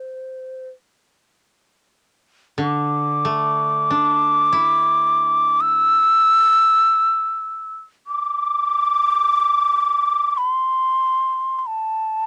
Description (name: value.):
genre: japanese traditional, Japanese chamber music.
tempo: free time.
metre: none.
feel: none.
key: unclear.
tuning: A4 = 440 Hz.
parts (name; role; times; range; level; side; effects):
breathy mellow shakuhachi; melody; 0.0-12.3 s; D5 to E6; -19 LUFS; equal; none.
koto; accompaniment; 2.6-7.1 s; D3 to E4; -28 LUFS; equal; none.
room: little or no reverb.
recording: dry, gritty hardware recording, transformer saturation, cassette tape.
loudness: -18 LUFS.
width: mono.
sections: 1.0-12.3 A section.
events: none.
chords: none.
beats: free time.